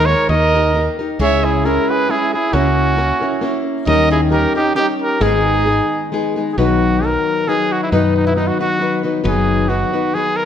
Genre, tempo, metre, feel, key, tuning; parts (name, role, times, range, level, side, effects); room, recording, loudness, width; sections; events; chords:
mexican folk, mariachi; 134 BPM; 3/4; swing 54% on 8ths; G# minor, B major from 6.6 s; A4 = 441 Hz
clear trumpet; melody; 0.0-10.5 s; D#4 to E5; -18 LUFS; right 1 dB; slapback echo
warm trumpet; second line; 0.0-6.1 s; C#4 to C#5; -22 LUFS; right 4 dB
nylon-string guitar; accompaniment; 0.0-10.5 s; G#2 to B4; -18 LUFS; left 3 dB
woody fretless electric bass; bass; 0.0-9.8 s; F#1 to F#2; -18 LUFS; equal
moderate recital hall reverb, RT60 1.6 s; -14 LUFS; side -9 dB against mid
0.0-6.6 A section; 6.6-10.5 B section
0.3 D#; 1.2 C#m; 2.5 A#dim/C#; 3.9 D#7; 5.2 G#m; 6.6 B; 9.3 B/F#